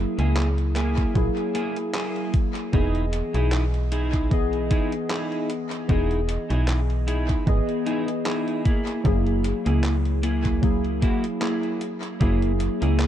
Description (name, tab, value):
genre	vaporwave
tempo	76 BPM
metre	4/4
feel	swing 55% on 16ths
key	unclear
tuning	A4 = 440 Hz
part	warbly lo-fi synth keys	accompaniment	0.0-13.1 s	E3 to D#5	-27 LUFS	left 1 dB	wide subtle chorus, dub echo
part	slap-like FM bass	bass	0.0-13.1 s	E1 to C#2	-23 LUFS	equal	none
part	clean electric guitar	riff	0.2-13.1 s	A#3 to G#4	-29 LUFS	right 2 dB	analog chorus, dub echo
part	detuned 8-bit digital drum machine	drums	0.2-13.1 s	handclaps, hi-hat	-35 LUFS	equal	overdrive, vintage 12-bit sampler grit, dub echo
part	electronic kick drum	drums	1.0-12.4 s	none	-23 LUFS	equal	overdrive, vintage 12-bit sampler grit
room	digital ambience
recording	echo-heavy mix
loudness	-21 LUFS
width	side -11 dB against mid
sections	0.0-13.1 A section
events	none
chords	0.0 F#9; 2.7 Emaj7; 8.7 F#9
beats	0.37 1.16 1.95 | 2.73 3.52 4.31 5.10 | 5.89 6.68 7.47 8.26 | 9.05 9.84 10.63 11.42 | 12.21 13.00